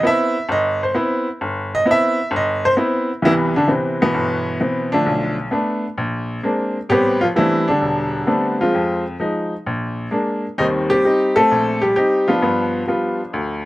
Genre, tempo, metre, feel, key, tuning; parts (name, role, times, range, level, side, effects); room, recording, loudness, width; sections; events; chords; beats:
solo jazz; 131 BPM; 4/4; swing 68% on 8ths; C major; A4 = 440 Hz
bright upright piano; solo; 0.0-13.7 s; E1 to E5; -16 LUFS; equal
little or no reverb; recorded outdoors, with no room sound; -16 LUFS; side -17 dB against mid
0.0-3.2 A section; 3.2-13.7 B section
upright piano solo 0.0-3.2
0.0 Cmaj7; 5.1 Bm7b5; 6.0 Bb9; 6.9 Am11; 8.7 Fm7; 9.7 Bb7; 10.6 Eb6; 12.4 G7
0.02 0.48 0.94 | 1.39 1.85 2.31 2.77 | 3.22 3.68 4.14 4.60 | 5.06 5.52 5.98 6.43 | 6.89 7.35 7.81 8.27 | 8.73 9.19 9.65 10.11 | 10.57 11.03 11.49 11.95 | 12.41 12.87 13.32